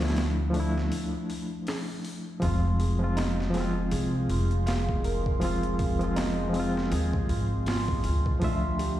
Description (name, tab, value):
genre	trip hop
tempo	80 BPM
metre	4/4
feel	swing 58% on 16ths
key	unclear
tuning	A4 = 438 Hz
part	reed electric piano	accompaniment	0.0-9.0 s	F3 to E5	-30 LUFS	left 1 dB	tremolo, vintage 12-bit sampler grit, tape echo
part	upright bass	bass	0.0-9.0 s	F1 to Eb2	-28 LUFS	equal	none
part	boom bap sampler-style drum kit	drums	0.0-9.0 s	hi-hat, kick drum, snare drum	-32 LUFS	equal	overdrive
part	deep dark ambient pad	sustained chords	3.7-9.0 s	F3 to D6	-38 LUFS	equal	chorus, built-in reverb, vintage 12-bit sampler grit
part	felt-muted upright piano	arpeggios	2.4-9.0 s	C4 to F5	-34 LUFS	right 3 dB	vintage 12-bit sampler grit, tape echo
room	light reverb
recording	played on a big sound system in a bare room, large studio reverb, vinyl crackle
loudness	-25 LUFS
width	side -13 dB against mid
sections	0.0-9.0 A section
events	break 0.9-2.4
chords	0.0 Dmadd9; 2.4 Fm; 8.4 Dmadd9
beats	0.17 0.92 1.67 | 2.42 3.17 3.92 4.67 | 5.42 6.17 6.92 7.67 | 8.42